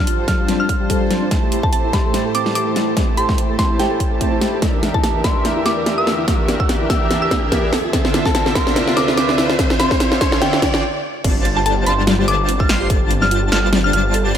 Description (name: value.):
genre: future bass.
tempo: 145 BPM.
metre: 4/4.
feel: swing 55% on 16ths, half-time.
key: unclear.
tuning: A4 = 440 Hz.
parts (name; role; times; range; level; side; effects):
mallet-like synth pluck; melody; 0.0-14.0 s; G5 to F6; -23 LUFS; equal; chorus, cassette tape, sidechain pumping, ping-pong delay.
clear symphonic string section; sustained chords; 0.0-10.8 s; D2 to E5; -31 LUFS; left 1 dB; sidechain pumping.
soft round pluck; arpeggios; 0.0-14.4 s; C4 to D5; -27 LUFS; right 3 dB; lush chorus, sidechain pumping, tape echo.
big bright polysynth; riff; 0.0-14.4 s; D3 to C6; -21 LUFS; equal; chorus, sidechain pumping.
riser; sound effects; 1.8-10.8 s; none; -28 LUFS; equal; none.
dubstep drum kit; drums; 0.1-14.4 s; crash cymbal, hi-hat, snare drum; -20 LUFS; equal; small room ambience.
electronic kick drum; drums; 0.3-13.0 s; none; -19 LUFS; equal; small room ambience.
airy dreamy lead; arpeggios; 11.2-14.4 s; A6 to C7; -28 LUFS; equal; chorus, phaser, sidechain pumping, tape echo.
wide detuned saw bass; bass; 11.2-14.4 s; G1; -19 LUFS; equal; chorus, sidechain pumping.
room: light reverb, digital ambience.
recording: none.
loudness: -14 LUFS.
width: side -9 dB against mid.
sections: 0.0-11.2 A section; 11.2-14.4 B section.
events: build-up 0.0-11.2; drum fill 0.0-10.8; filter sweep on analog polysynth 0.0-11.2; riser 1.8-10.8; stop 10.8-11.2; drop 11.2-14.4.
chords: 0.0 G9sus4; 1.3 Am7; 4.6 Em7b5; 7.7 Dm9; 11.2 G9sus4.